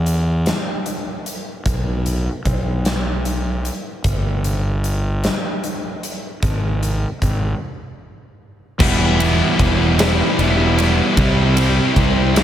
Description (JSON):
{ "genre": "quiet-loud alternative rock", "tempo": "50 BPM (dotted quarters)", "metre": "6/8", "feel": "straight", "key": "E minor", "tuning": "A4 = 439 Hz", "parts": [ { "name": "fuzz fingered electric bass", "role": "bass", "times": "0.0-12.4 s", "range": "E1 to E2", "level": "-19 LUFS", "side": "equal", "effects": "overdrive" }, { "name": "huge arena drum kit", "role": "drums", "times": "0.1-12.4 s", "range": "crash cymbal, hi-hat, kick drum, ride cymbal, snare drum", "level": "-21 LUFS", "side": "equal", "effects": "none" }, { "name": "thick fuzz guitar", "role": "riff", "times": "8.8-12.4 s", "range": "C3 to E4", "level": "-16 LUFS", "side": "equal", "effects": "distortion" } ], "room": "light reverb", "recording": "none", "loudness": "-16 LUFS", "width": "side -11 dB against mid", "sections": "0.0-8.8 A section; 8.8-12.4 B section", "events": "break 7.6-8.8", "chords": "0.0 N.C.; 8.8 Em; 11.2 C" }